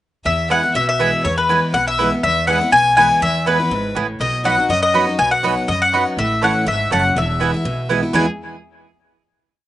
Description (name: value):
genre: bluegrass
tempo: 244 BPM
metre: 4/4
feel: swing 54% on 8ths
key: E major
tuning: A4 = 439 Hz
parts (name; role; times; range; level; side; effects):
- clear fiddle; second line; 0.2-8.3 s; G#4 to G#5; -25 LUFS; left 2 dB; slapback echo
- mandolin; melody; 0.3-8.3 s; B4 to G#5; -17 LUFS; left 2 dB; slapback echo
- picked steel-string acoustic guitar; accompaniment; 0.3-8.3 s; E2 to F#4; -22 LUFS; equal; none
- upright bass; bass; 0.3-8.3 s; E1 to F#2; -26 LUFS; equal; none
- mandolin; stabs; 0.5-8.3 s; A3 to B5; -20 LUFS; right 7 dB; none
room: little or no reverb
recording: recorded outdoors, with no room sound, nothing above 10.8 kHz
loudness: -14 LUFS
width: side -13 dB against mid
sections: 0.3-8.1 A section; 8.1-9.1 final chord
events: none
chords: 0.3 E; 4.2 B; 6.2 A; 7.2 E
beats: | 0.26 0.50 0.75 1.00 | 1.25 1.49 1.74 1.99 | 2.23 2.48 2.73 2.98 | 3.22 3.47 3.71 3.96 | 4.21 4.45 4.70 4.95 | 5.19 5.44 5.68 5.93 | 6.18 6.42 6.67 6.91 | 7.16 7.41 7.65 7.90 | 8.14